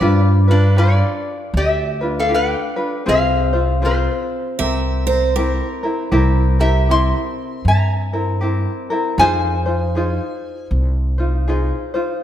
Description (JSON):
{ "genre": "Hawaiian", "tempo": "78 BPM", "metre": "4/4", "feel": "swing 62% on 8ths", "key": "F minor", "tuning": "A4 = 437 Hz", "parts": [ { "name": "picked steel-string acoustic guitar", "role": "second line", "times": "0.0-6.3 s", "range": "Bb4 to E5", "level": "-23 LUFS", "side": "right 5 dB", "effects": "none" }, { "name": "tenor ukulele", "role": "accompaniment", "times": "0.0-12.2 s", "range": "C4 to C5", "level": "-21 LUFS", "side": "left 1 dB", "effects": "none" }, { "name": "upright bass", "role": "bass", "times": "0.0-11.7 s", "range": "C2 to G2", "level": "-17 LUFS", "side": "equal", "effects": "none" }, { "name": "metal-body resonator slide guitar", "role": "melody", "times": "0.5-10.7 s", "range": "D4 to C6", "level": "-19 LUFS", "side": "left 1 dB", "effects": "none" } ], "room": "moderate scoring stage reverb, RT60 1.6 s", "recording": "none", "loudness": "-15 LUFS", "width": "side -11 dB against mid", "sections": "0.0-12.2 A section", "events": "none", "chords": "0.0 G7; 3.1 Fm/C; 4.6 C7; 9.2 Fm7" }